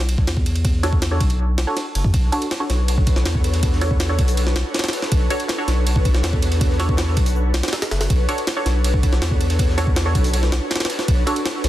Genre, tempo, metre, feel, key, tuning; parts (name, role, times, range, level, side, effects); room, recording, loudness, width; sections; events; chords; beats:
drum and bass, jungle; 161 BPM; 4/4; straight; B minor; A4 = 440 Hz
saturated sub bass; bass; 0.0-11.7 s; F#1 to E2; -20 LUFS; equal
jungle sampler-style drum kit; drums; 0.0-11.7 s; kick drum, ride cymbal, snare drum; -20 LUFS; equal; small room reverb
filtered dub chord stab; stabs; 0.8-11.4 s; D4 to C#5; -26 LUFS; right 1 dB; phaser, cassette tape, dub echo
ethereal airy pad; sustained chords; 2.3-11.7 s; D4 to C#5; -27 LUFS; equal; ensemble chorus, built-in reverb
crunchy breakbeat drum kit; drums; 2.1-11.7 s; hi-hat, shaker, snare drum; -36 LUFS; left 2 dB
studio ambience; dense, heavily limited modern master; -17 LUFS; side -14 dB against mid
0.0-11.7 A section
0.0 Bm9
0.27 | 0.65 1.02 1.39 1.76 | 2.14 2.51 2.88 3.26 | 3.63 4.00 4.37 4.75 | 5.12 5.49 5.87 6.24 | 6.61 6.98 7.36 7.73 | 8.10 8.47 8.85 9.22 | 9.59 9.96 10.34 10.71 | 11.08 11.46